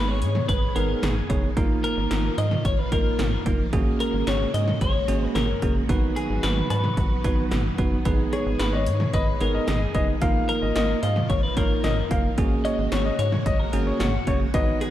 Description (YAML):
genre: synth-pop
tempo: 111 BPM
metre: 4/4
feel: straight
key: unclear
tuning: A4 = 440 Hz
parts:
  - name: twelve-string electric guitar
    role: melody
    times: 0.0-14.9 s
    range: F#4 to D#5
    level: -29 LUFS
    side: left 3 dB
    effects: tape echo
  - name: bell-like tine electric piano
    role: accompaniment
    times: 0.0-14.9 s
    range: A#3 to C#5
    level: -28 LUFS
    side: right 5 dB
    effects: none
  - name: string machine, full ensemble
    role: sustained chords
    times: 0.0-14.9 s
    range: C#3 to G#4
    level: -32 LUFS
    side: equal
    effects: ensemble chorus
  - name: rubbery square bass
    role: bass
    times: 0.0-14.7 s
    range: F#1 to G#2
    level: -26 LUFS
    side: equal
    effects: none
  - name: 80s electronic pad drums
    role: drums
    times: 0.2-14.9 s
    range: cowbell, hi-hat, kick drum, snare drum, toms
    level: -25 LUFS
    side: equal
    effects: gated reverb on snare and toms
  - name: warm concert grand piano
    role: second line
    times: 8.3-14.8 s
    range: C#5 to E#5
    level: -30 LUFS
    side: left 3 dB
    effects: tape echo
room: light reverb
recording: dark, warm production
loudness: -21 LUFS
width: side -12 dB against mid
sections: 0.0-14.9 A section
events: none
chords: 0.0 G#m; 1.6 D#sus2/G#; 3.7 F#add9/G#; 5.9 B/G#; 10.2 D#sus2/G#; 12.4 F#add9/G#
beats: 0.49 1.03 | 1.57 2.11 2.65 3.19 | 3.73 4.27 4.81 5.35 | 5.89 6.43 6.97 7.51 | 8.05 8.60 9.14 9.68 | 10.22 10.76 11.30 11.84 | 12.38 12.92 13.46 14.00 | 14.54